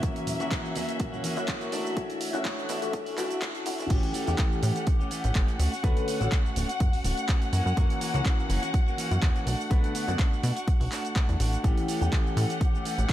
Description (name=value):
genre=filtered disco house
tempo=124 BPM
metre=4/4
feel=swing 54% on 16ths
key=A mixolydian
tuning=A4 = 441 Hz
part: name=clear concert grand piano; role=accompaniment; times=0.0-13.1 s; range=D3 to C#5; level=-33 LUFS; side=left 2 dB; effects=phaser, vintage 12-bit sampler grit, sidechain pumping, low-pass filter
part: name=dark symphonic violin section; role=sustained chords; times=0.0-13.1 s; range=E5 to F#5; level=-35 LUFS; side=left 3 dB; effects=sidechain pumping, low-pass filter
part: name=clean electric guitar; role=riff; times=0.0-13.1 s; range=E3 to G4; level=-35 LUFS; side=right 2 dB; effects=sidechain pumping, low-pass filter
part: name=plucky analog bass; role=bass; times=0.0-13.1 s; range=D1 to B2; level=-28 LUFS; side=equal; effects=sidechain pumping, high-pass filter, low-pass filter
part: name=electronic kick drum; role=drums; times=0.0-13.1 s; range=none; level=-25 LUFS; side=equal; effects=none
part: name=punchy analog drum machine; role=drums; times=0.0-13.1 s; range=crash cymbal, handclaps, hi-hat, shaker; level=-36 LUFS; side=right 1 dB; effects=sidechain pumping on hats, sidechain pumping on perc, sidechain pumping on cymbals
part: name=tube shaker and congas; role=percussion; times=0.0-3.9 s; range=none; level=-41 LUFS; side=left 1 dB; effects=sidechain pumping on perc, low-pass filter on perc
room=light reverb, digital ambience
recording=high-pass filter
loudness=-24 LUFS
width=side -13 dB against mid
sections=0.0-3.9 A section; 3.9-13.1 B section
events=build-up 0.0-3.9; drop 3.9-13.1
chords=0.0 F#7; 1.7 Bm7; 3.9 A7; 5.6 Dmaj7; 7.5 F#7; 9.5 Bm7; 11.6 A7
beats=| 0.03 0.51 1.00 1.48 | 1.97 2.45 2.93 3.42 | 3.90 4.38 4.87 5.35 | 5.84 6.32 6.80 7.29 | 7.77 8.26 8.74 9.22 | 9.71 10.19 10.68 11.16 | 11.64 12.13 12.61 13.10